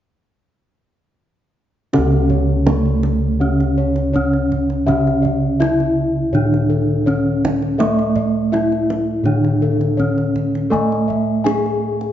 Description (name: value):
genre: Javanese gamelan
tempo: 82 BPM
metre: 4/4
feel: straight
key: C# pelog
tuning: A4 = 440 Hz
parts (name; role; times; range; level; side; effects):
- gamelan-type bronze metallophone; melody; 1.9-12.1 s; A3 to G#4; -19 LUFS; right 1 dB; none
- gamelan-type bronze metallophone; accompaniment; 1.9-12.1 s; C#3 to A3; -21 LUFS; right 2 dB; none
- gamelan-type bossed gongs; arpeggios; 1.9-11.9 s; A4 to G#5; -24 LUFS; left 5 dB; none
- gamelan-type bossed gongs; bass; 1.9-12.1 s; C#2 to A4; -21 LUFS; left 1 dB; none
- kendang; percussion; 1.9-12.1 s; none; -25 LUFS; right 4 dB; none
room: light reverb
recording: nothing above 7.5 kHz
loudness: -15 LUFS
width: side -11 dB against mid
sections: 1.9-12.1 A section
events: none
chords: none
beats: | 1.94 2.67 3.40 4.13 | 4.87 5.60 6.33 7.06 | 7.79 8.53 9.26 9.99 | 10.72 11.45